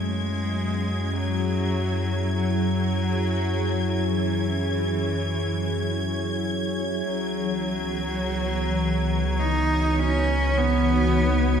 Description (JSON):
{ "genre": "ambient", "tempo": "free time", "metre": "none", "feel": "none", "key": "unclear", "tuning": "A4 = 440 Hz", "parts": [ { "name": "bright cello", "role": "melody", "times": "0.0-11.6 s", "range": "E3 to D#4", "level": "-28 LUFS", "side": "right 1 dB", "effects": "diffuse ambient delay" }, { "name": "glassy FM pad", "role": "sustained chords", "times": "0.0-11.6 s", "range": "E3 to C#5", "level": "-26 LUFS", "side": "equal", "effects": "ensemble chorus, built-in reverb" }, { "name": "warm sub bass", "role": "bass", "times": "0.0-11.6 s", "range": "C#2 to F#2", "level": "-26 LUFS", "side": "equal", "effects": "none" }, { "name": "clear studio violin section", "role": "texture", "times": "0.0-11.6 s", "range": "G#6", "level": "-34 LUFS", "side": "left 2 dB", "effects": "none" } ], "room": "wet lush hall reverb, RT60 3.0 s", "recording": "dreamy mix soaked in reverb", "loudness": "-22 LUFS", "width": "side -7 dB against mid", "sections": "0.0-11.6 A section", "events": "fade-in on ambient pad 0.0-11.6; fade-in on cello 0.0-11.6", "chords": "0.0 F#7sus2; 7.1 C#m11", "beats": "free time" }